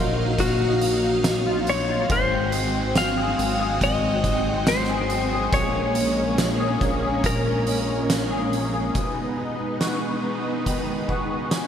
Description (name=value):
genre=dream pop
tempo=70 BPM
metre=4/4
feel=straight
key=Bb minor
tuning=A4 = 440 Hz
part: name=clean lap steel guitar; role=melody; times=0.0-8.5 s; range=Gb4 to F5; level=-25 LUFS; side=left 2 dB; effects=wide subtle chorus, digital delay
part: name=string machine, violins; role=sustained chords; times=0.0-11.7 s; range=Gb3 to F5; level=-27 LUFS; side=right 1 dB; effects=ensemble chorus
part: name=clean electric guitar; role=arpeggios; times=0.0-11.7 s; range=Ab2 to Ab4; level=-28 LUFS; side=left 3 dB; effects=analog chorus, digital delay
part: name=chorused synth bass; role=bass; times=0.0-8.9 s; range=Ab1 to Bb1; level=-28 LUFS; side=equal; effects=none
part: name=oversized low-tuned drum kit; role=drums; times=0.4-11.7 s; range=hi-hat, kick drum, snare drum, tambourine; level=-27 LUFS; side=right 1 dB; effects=none
room=moderate lush hall reverb, RT60 2.8 s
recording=bright 1980s-style digital production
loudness=-20 LUFS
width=side -8 dB against mid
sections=0.0-9.0 A section; 9.0-11.7 B section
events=none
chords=0.0 Ebmadd9/Bb; 2.1 Ab7; 5.5 Bbm7; 9.0 B6